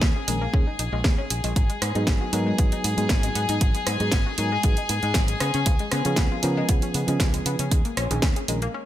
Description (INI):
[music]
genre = nu-disco, nu disco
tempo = 117 BPM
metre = 4/4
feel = straight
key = G# dorian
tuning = A4 = 440 Hz
[part]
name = rich chamber string section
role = sustained chords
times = 0.0-8.7 s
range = G#4 to G#5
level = -30 LUFS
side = left 4 dB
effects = sidechain pumping
[part]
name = analog pluck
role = arpeggios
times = 0.0-8.8 s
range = E#3 to G#4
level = -32 LUFS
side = left 3 dB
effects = chorus, phaser, sidechain pumping, tape echo
[part]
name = fingered electric bass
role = bass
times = 0.0-8.7 s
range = G#1 to C#3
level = -27 LUFS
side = equal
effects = sidechain pumping
[part]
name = electronic kick drum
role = drums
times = 0.0-8.3 s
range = none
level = -22 LUFS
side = equal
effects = none
[part]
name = house drum kit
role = drums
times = 0.0-8.7 s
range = hi-hat, rim click, snare drum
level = -28 LUFS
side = right 2 dB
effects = none
[part]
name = mellow reed electric piano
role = accompaniment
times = 0.3-8.6 s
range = D#3 to A#4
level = -29 LUFS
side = right 1 dB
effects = sidechain pumping, low-pass filter, digital delay
[sound]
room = digital ambience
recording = faint mains hum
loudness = -21 LUFS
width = side -13 dB against mid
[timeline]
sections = 0.0-8.9 A section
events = none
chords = 0.0 D#7sus4; 1.6 G#m7; 5.4 C#7; 7.7 D#7sus4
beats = 0.02 0.54 1.05 | 1.56 2.08 2.59 3.10 | 3.61 4.13 4.64 5.15 | 5.67 6.18 6.69 7.20 | 7.72 8.23 8.74